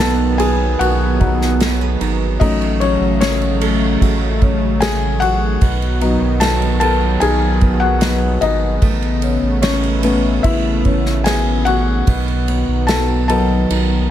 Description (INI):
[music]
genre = pop ballad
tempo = 75 BPM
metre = 4/4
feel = straight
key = unclear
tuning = A4 = 440 Hz
[part]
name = felt-muted upright piano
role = accompaniment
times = 0.0-14.1 s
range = F#3 to A5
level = -19 LUFS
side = left 4 dB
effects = none
[part]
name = chorused pulse-width pad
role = sustained chords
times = 0.0-14.1 s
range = C#3 to B3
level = -21 LUFS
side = right 1 dB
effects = none
[part]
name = nylon-string guitar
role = arpeggios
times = 0.0-14.1 s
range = B2 to B4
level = -26 LUFS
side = right 5 dB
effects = none
[part]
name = saturated sub bass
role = bass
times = 0.0-14.1 s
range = G#1 to B1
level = -18 LUFS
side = right 1 dB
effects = none
[part]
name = unplugged drum kit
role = drums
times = 0.0-13.9 s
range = kick drum, ride cymbal, snare drum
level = -21 LUFS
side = equal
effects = none
[sound]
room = studio reverb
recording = none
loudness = -13 LUFS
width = side -11 dB against mid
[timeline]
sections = 0.0-14.1 A section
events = felt piano solo 0.0-14.1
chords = 0.0 B; 2.4 F#m/A; 5.6 B; 8.8 Aadd9; 12.1 B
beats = 0.80 1.61 | 2.41 3.21 4.01 4.82 | 5.61 6.41 7.21 8.02 | 8.82 9.63 10.44 11.25 | 12.07 12.88 13.70